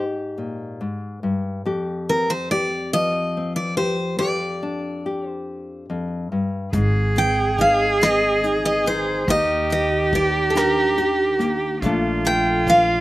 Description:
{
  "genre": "acoustic folk-pop ballad",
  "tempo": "47 BPM (dotted quarters)",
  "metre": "6/8",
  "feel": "straight",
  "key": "unclear",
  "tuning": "A4 = 438 Hz",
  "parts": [
    { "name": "picked steel-string acoustic guitar", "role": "melody", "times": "0.0-13.0 s", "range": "A4 to G5", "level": "-21 LUFS", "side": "equal", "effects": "none" },
    { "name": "nylon-string guitar", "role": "accompaniment", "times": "0.0-13.0 s", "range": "F2 to A4", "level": "-25 LUFS", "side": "left 2 dB", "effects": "slapback echo" },
    { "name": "warm cello", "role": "second line", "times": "6.7-13.0 s", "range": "F4 to Ab4", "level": "-21 LUFS", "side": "right 2 dB", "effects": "none" },
    { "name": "upright bass", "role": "bass", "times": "6.7-13.0 s", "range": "Ab1 to Eb2", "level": "-27 LUFS", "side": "equal", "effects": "none" },
    { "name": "soft brush drum kit", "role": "drums", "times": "6.7-12.9 s", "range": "hi-hat, kick drum, rim click", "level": "-29 LUFS", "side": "equal", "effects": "none" }
  ],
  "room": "light reverb",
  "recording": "recorded outdoors, with no room sound",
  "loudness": "-18 LUFS",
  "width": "side -16 dB against mid",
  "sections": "0.0-6.7 A section; 6.7-13.0 B section",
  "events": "none",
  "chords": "0.0 Abmaj7(no3); 1.6 Fsus2; 4.2 Dmadd11/F; 6.7 Ab; 9.3 Ebmaj7; 11.8 Bbmaj7"
}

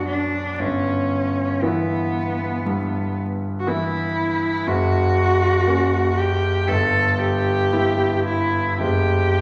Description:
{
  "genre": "classical, romantic duo for cello and grand piano",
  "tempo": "59 BPM",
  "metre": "4/4",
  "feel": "rubato",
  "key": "unclear",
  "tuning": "A4 = 439 Hz",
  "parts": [
    { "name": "rich cello", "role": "melody", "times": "0.0-9.4 s", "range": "B3 to A4", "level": "-24 LUFS", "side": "equal", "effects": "none" },
    { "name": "clear concert grand piano", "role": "accompaniment", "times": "0.0-9.4 s", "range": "F#1 to E4", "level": "-24 LUFS", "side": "equal", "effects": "none" }
  ],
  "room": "wet recital hall reverb, RT60 1.6 s",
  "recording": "vinyl crackle",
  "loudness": "-21 LUFS",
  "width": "mono",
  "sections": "0.0-9.4 A section",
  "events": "none",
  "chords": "0.0 Bm; 0.6 Em/G; 4.7 F#; 6.7 Em/G; 8.8 N.C."
}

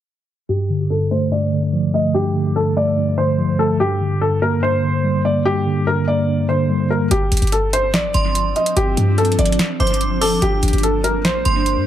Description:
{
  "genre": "hip hop, trap",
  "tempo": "145 BPM",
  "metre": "4/4",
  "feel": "half-time",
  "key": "unclear",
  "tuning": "A4 = 441 Hz",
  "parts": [
    { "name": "felt-muted upright piano", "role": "melody", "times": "0.5-11.8 s", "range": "G4 to Eb5", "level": "-20 LUFS", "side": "left 1 dB", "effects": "low-pass filter, analog delay" },
    { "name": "mellow tine electric piano", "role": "accompaniment", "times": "0.5-7.1 s", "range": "G2 to Bb3", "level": "-18 LUFS", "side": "equal", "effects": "medium stereo tremolo, low-pass filter, analog delay" },
    { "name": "granular cloud pad", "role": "sustained chords", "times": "7.8-11.9 s", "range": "F3 to D4", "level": "-24 LUFS", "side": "equal", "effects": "built-in reverb" },
    { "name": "short 808-style bass", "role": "bass", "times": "7.1-11.9 s", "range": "G1 to G2", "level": "-19 LUFS", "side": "equal", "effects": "none" },
    { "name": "booming analog drum machine", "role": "drums", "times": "7.1-11.8 s", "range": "hi-hat, snare drum", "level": "-22 LUFS", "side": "right 1 dB", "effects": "analog delay" },
    { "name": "metallic FM bell", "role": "second line", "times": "8.1-11.9 s", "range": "C6 to D6", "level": "-24 LUFS", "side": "right 4 dB", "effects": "chorus, analog delay" }
  ],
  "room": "light reverb, digital ambience",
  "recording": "echo-heavy mix",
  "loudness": "-15 LUFS",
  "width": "side -11 dB against mid",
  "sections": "0.5-7.1 A section; 7.1-11.9 B section",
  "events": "filter sweep 0.5-7.1",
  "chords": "0.5 Dm/G; 3.8 Gm; 7.1 Dm7/G; 10.4 Gm"
}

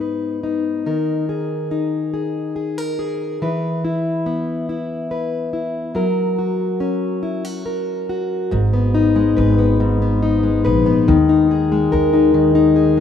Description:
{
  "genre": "pop",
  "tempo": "47 BPM (dotted quarters)",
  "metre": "6/8",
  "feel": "straight",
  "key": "G# minor",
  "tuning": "A4 = 439 Hz",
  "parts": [
    { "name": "fingerpicked plugged-in steel-string acoustic guitar", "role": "accompaniment", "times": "0.0-13.0 s", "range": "G#2 to B4", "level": "-17 LUFS", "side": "left 3 dB", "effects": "none" },
    { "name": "upright bass", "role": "bass", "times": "8.5-13.0 s", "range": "G#1 to D#2", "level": "-19 LUFS", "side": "equal", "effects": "none" }
  ],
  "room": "moderate lush hall reverb, RT60 2.6 s",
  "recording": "rough home demo mix",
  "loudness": "-16 LUFS",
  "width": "side -8 dB against mid",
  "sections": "0.0-8.5 A section; 8.5-13.0 B section",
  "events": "none",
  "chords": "0.0 G#m; 0.9 D#sus4; 3.4 E5; 6.0 F#; 8.5 G#m; 11.1 D#sus4"
}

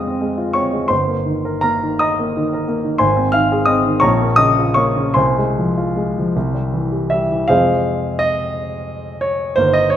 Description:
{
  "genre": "classical, romantic character piece for solo piano",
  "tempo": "49-61 BPM (dotted quarters)",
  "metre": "6/8",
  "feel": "rubato",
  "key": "F minor",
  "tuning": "A4 = 437 Hz",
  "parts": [
    { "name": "warm grand piano", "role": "solo", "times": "0.0-10.0 s", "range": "G1 to F6", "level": "-15 LUFS", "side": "equal", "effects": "none" }
  ],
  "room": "wet recital hall reverb, RT60 1.7 s",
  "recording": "none",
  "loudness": "-15 LUFS",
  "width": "side -10 dB against mid",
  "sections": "0.0-7.5 A section; 7.5-10.0 A section",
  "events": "none",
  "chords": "0.0 Fm; 0.9 Eb/G; 3.0 Ab; 4.0 Bbm; 5.2 Fm/C; 6.3 C; 7.5 Fm"
}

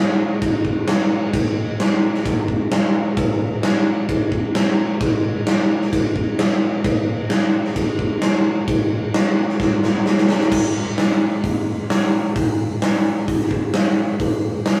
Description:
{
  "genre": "rock",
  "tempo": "131 BPM",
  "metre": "4/4",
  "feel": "straight",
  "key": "none",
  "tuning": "none",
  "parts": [
    { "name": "huge arena drum kit", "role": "drums", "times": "0.4-14.8 s", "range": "crash cymbal, hi-hat, kick drum, snare drum", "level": "-19 LUFS", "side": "equal", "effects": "none" }
  ],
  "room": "light reverb",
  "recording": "rough rehearsal-room recording, small room ambience",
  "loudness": "-19 LUFS",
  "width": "mono",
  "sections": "0.0-10.5 A section; 10.5-14.8 B section",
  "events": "drum fill 9.6-10.5",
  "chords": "none"
}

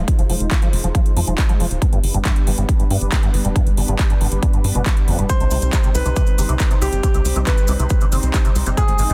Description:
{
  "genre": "uplifting trance",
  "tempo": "138 BPM",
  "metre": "4/4",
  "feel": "straight",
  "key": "C harmonic minor",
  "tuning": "A4 = 440 Hz",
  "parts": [
    { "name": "filtered supersaw swell", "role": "sustained chords", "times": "0.0-9.1 s", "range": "G3 to C5", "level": "-30 LUFS", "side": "equal", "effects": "phaser, sidechain pumping, low-pass filter" },
    { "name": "liquid acid bass", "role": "arpeggios", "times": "0.0-9.1 s", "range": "D2 to F3", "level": "-28 LUFS", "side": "equal", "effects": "ensemble chorus, sidechain pumping, delay" },
    { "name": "tight sequencer bass", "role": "bass", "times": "0.0-9.1 s", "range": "Eb1 to G2", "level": "-22 LUFS", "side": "equal", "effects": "sidechain pumping" },
    { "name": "big-room dance drum kit", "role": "drums", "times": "0.1-9.1 s", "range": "handclaps, hi-hat", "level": "-29 LUFS", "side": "equal", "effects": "sidechain pumping on hats, sidechain pumping on cymbals" },
    { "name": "electronic kick drum", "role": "drums", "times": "0.1-8.9 s", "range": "none", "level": "-19 LUFS", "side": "equal", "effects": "none" },
    { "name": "warm grand piano", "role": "second line", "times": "5.3-9.1 s", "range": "G4 to C5", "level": "-27 LUFS", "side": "equal", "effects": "delay" },
    { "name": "cabasa", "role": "percussion", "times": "5.3-9.1 s", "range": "none", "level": "-34 LUFS", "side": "equal", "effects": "none" }
  ],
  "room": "little or no reverb",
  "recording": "dense, heavily limited modern master",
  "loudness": "-18 LUFS",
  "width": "mono",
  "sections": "0.0-9.1 A section",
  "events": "filter sweep on acid bass 0.0-9.1; filter sweep on supersaw synth 0.0-9.1",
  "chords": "0.0 Fm7; 1.8 G; 5.3 Cm"
}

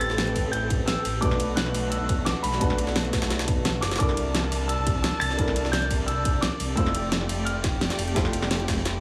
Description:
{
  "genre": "liquid drum and bass",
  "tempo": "173 BPM",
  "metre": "4/4",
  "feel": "straight",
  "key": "unclear",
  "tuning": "A4 = 440 Hz",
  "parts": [
    { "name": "dark baby grand piano", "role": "melody", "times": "0.0-8.1 s", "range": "B5 to A6", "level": "-33 LUFS", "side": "equal", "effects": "digital delay" },
    { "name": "felt-muted upright piano", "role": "accompaniment", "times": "0.0-9.0 s", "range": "A3 to C5", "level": "-34 LUFS", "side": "equal", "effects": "digital delay" },
    { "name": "warm symphonic string section", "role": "sustained chords", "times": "0.0-9.0 s", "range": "A3 to A5", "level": "-36 LUFS", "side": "equal", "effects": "none" },
    { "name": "swelling detuned saw bass", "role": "bass", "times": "0.0-9.0 s", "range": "F1 to C2", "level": "-31 LUFS", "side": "equal", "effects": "none" },
    { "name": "jungle sampler-style drum kit", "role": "drums", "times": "0.0-8.9 s", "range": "hi-hat, snare drum", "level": "-34 LUFS", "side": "equal", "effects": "high-pass filter on snare, high-pass filter on hats" },
    { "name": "pop drum kit", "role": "drums", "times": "0.0-8.9 s", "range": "hi-hat, ride cymbal, snare drum", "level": "-33 LUFS", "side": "equal", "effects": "none" },
    { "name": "electronic kick drum", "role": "drums", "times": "0.4-8.8 s", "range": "none", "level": "-30 LUFS", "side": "equal", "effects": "none" }
  ],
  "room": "light reverb",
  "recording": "studio reverb",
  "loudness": "-25 LUFS",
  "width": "mono",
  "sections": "0.0-9.0 A section",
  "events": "none",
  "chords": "0.0 Am9; 1.2 Bm7; 4.0 C13; 6.8 Fmaj7"
}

